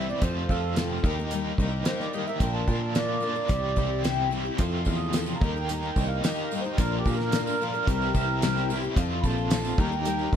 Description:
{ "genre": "folk rock and heartland rock", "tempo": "110 BPM", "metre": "4/4", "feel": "straight", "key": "unclear", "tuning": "A4 = 438 Hz", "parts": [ { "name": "mellow accordion", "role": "melody", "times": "0.0-10.3 s", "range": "G4 to Eb6", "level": "-32 LUFS", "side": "right 4 dB", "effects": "none" }, { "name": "picked twelve-string acoustic guitar", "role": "accompaniment", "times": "0.0-10.4 s", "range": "Bb2 to C5", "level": "-31 LUFS", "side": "left 6 dB", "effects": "none" }, { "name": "biting overdriven guitar", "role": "riff", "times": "0.0-10.4 s", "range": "F2 to G4", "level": "-32 LUFS", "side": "right 1 dB", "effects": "tremolo" }, { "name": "picked electric bass", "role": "bass", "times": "0.0-10.4 s", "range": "Bb1 to Bb2", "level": "-30 LUFS", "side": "equal", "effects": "none" }, { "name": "damped 70s drum kit", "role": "drums", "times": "0.2-10.4 s", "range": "hi-hat, kick drum, snare drum", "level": "-27 LUFS", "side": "equal", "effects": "none" }, { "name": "mellow tonewheel organ", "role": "sustained chords", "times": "4.6-10.4 s", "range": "C4 to C5", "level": "-40 LUFS", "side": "right 1 dB", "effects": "none" }, { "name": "tambourine", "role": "percussion", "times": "4.6-10.3 s", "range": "none", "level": "-45 LUFS", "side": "right 8 dB", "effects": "none" } ], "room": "light reverb", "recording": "dark, warm production", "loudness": "-24 LUFS", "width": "side -9 dB against mid", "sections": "0.0-10.4 A section", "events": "accordion solo 0.0-10.4", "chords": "0.2 F; 1.0 Eb; 2.4 Bb; 3.5 C; 4.6 F; 5.4 Eb; 6.8 Bb; 7.9 C; 9.0 F; 9.8 Eb" }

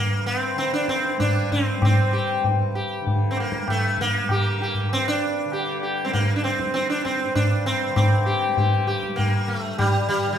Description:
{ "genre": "indian classical, Hindustani", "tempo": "98 BPM", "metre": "5/4", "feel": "straight", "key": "G raga bhimpalasi", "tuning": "A4 = 439 Hz", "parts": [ { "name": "sitar", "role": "melody", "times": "0.0-10.4 s", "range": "G3 to G4", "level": "-23 LUFS", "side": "equal", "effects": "none" }, { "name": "tanpura", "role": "drone", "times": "0.0-10.4 s", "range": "G2 to G3", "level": "-32 LUFS", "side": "left 1 dB", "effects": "none" }, { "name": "tabla", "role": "percussion", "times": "0.6-10.3 s", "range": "none", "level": "-23 LUFS", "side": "equal", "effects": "none" } ], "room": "wet large studio reverb, RT60 1.3 s", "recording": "band playing live in one room", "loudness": "-20 LUFS", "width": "side -9 dB against mid", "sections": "0.0-10.4 A section", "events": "none", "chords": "none" }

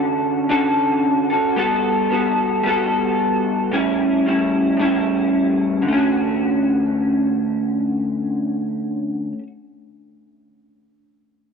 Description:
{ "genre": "indie pop", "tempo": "112 BPM", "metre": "4/4", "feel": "swing 60% on 16ths", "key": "D major", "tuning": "A4 = 439 Hz", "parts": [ { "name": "electric guitar through a small old amp", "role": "solo", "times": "0.0-9.5 s", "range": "A2 to A4", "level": "-17 LUFS", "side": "equal", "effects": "analog chorus, warbly pitch drift" } ], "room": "light reverb, digital ambience", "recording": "dry, close 1970s-style studio recording", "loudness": "-17 LUFS", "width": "side -6 dB against mid", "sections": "0.0-5.9 A section; 5.9-10.1 B section", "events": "none", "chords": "0.0 Dmaj7; 1.6 Gmaj9; 3.7 A7; 5.9 Dmaj7" }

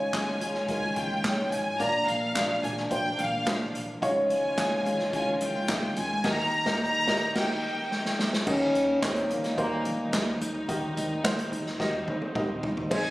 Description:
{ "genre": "piano-driven pop", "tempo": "108 BPM", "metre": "4/4", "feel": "straight", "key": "unclear", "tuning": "A4 = 441 Hz", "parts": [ { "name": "warm studio violin section", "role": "melody", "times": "0.0-8.2, 12.9-13.1 s", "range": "F5 to Bb5", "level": "-30 LUFS", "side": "equal", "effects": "none" }, { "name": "dark upright piano", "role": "accompaniment", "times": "0.0-13.1 s", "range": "Ab2 to Eb5", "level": "-30 LUFS", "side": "equal", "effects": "none" }, { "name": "dark studio string section", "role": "sustained chords", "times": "0.0-13.1 s", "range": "Eb3 to F4", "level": "-37 LUFS", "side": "equal", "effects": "none" }, { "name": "upright bass", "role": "bass", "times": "0.0-13.1 s", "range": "Ab1 to Eb3", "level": "-36 LUFS", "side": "equal", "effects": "none" }, { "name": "unplugged drum kit", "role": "drums", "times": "0.1-13.0 s", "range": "crash cymbal, handclaps, hi-hat, kick drum, snare drum, toms", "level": "-31 LUFS", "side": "equal", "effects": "none" }, { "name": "warm French horn section", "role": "second line", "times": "8.5-13.1 s", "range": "Bb2 to Ab4", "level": "-28 LUFS", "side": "left 1 dB", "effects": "none" } ], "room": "moderate concert hall reverb, RT60 2.1 s", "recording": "recorded on a phone in the room, studio reverb", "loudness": "-25 LUFS", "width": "side -18 dB against mid", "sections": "0.0-8.5 A section; 8.5-12.9 B section", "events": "band accent 6.2-8.5; drum fill 7.9-8.5, 11.8-12.9", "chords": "0.0 Dbadd9; 1.8 Bb; 4.0 Dbadd9; 6.2 Eb" }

